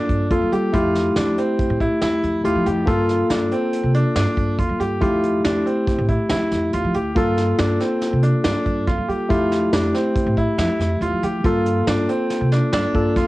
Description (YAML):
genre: progressive instrumental, band music in an uneven meter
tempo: 140 BPM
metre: 5/4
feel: straight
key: G dorian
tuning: A4 = 439 Hz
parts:
  - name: barky tine electric piano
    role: accompaniment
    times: 0.0-13.3 s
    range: A3 to A4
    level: -21 LUFS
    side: left 1 dB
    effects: cassette tape
  - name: bright grand piano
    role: arpeggios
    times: 0.0-13.3 s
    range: C4 to G4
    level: -24 LUFS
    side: right 2 dB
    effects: cassette tape
  - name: upright bass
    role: bass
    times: 0.1-13.2 s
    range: D2 to G3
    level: -23 LUFS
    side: equal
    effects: none
  - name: vintage brush drum kit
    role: drums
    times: 0.1-13.3 s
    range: hi-hat, kick drum, snare drum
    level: -25 LUFS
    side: equal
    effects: cassette tape
room: little or no reverb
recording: home recording on cassette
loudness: -17 LUFS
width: side -18 dB against mid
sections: 0.0-13.3 A section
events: none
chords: 0.0 Gm9; 0.7 Fmaj9; 2.9 Gm9; 5.0 Fmaj9; 7.2 Gm9; 9.3 Fmaj9; 11.4 Gm9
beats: 0.31 | 0.74 1.16 1.59 2.02 2.45 | 2.88 3.31 3.73 4.16 4.59 | 5.02 5.45 5.88 6.30 6.73 | 7.16 7.59 8.02 8.45 8.88 | 9.30 9.73 10.16 10.59 11.02 | 11.45 11.88 12.30 12.73 13.16